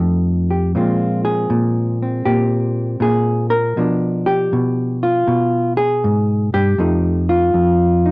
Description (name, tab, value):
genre	solo jazz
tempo	79 BPM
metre	4/4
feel	swing 67% on 8ths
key	unclear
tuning	A4 = 440 Hz
part	hollow-body jazz guitar	solo	0.0-8.1 s	F2 to Bb4	-14 LUFS	equal	none
room	light reverb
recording	worn, warbling old tape, cassette tape, warbly pitch drift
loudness	-14 LUFS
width	side -24 dB against mid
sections	0.0-8.1 A section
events	none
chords	0.0 F9; 0.7 Bbsus2; 3.8 Bdim7; 6.8 F9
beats	| 0.74 1.49 2.25 3.00 | 3.76 4.51 5.27 6.03 | 6.78 7.54